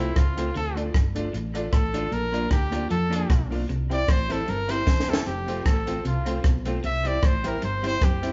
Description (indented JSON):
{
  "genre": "ska",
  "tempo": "153 BPM",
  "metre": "4/4",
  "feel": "swing 54% on 8ths",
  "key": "F major",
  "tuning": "A4 = 440 Hz",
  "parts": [
    { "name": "clear trumpet", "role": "melody", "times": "0.0-8.3 s", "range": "E4 to E5", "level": "-31 LUFS", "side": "equal", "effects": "none" },
    { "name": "semi-hollow electric guitar", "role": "accompaniment", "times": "0.0-8.3 s", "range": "G3 to F4", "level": "-35 LUFS", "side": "equal", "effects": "none" },
    { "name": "tack piano", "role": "stabs", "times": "0.0-8.3 s", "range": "C4 to D5", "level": "-37 LUFS", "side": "equal", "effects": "none" },
    { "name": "hollow-body short-scale fingered electric bass", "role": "bass", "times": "0.0-8.3 s", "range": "E1 to F2", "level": "-32 LUFS", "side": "equal", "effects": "none" },
    { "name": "clean electric guitar", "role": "riff", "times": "0.2-8.1 s", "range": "E2 to F3", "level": "-38 LUFS", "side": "equal", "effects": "none" },
    { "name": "compact cocktail drum kit", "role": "drums", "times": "0.2-8.3 s", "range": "hi-hat, kick drum, rim click, snare drum", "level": "-26 LUFS", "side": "equal", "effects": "none" }
  ],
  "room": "moderate large studio reverb, RT60 0.9 s",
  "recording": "band playing live in one room, nothing above 7.7 kHz",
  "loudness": "-25 LUFS",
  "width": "mono",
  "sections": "0.0-8.3 A section",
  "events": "trumpet solo 0.0-8.3; drum fill 4.9-5.3",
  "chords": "0.0 F; 0.6 Dm; 2.1 Bb; 3.7 C; 5.3 F; 6.8 C",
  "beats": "0.17 | 0.56 0.95 1.34 1.74 | 2.13 2.52 2.91 3.30 | 3.70 4.09 4.48 4.87 | 5.27 5.66 6.05 6.44 | 6.84 7.23 7.62 8.02"
}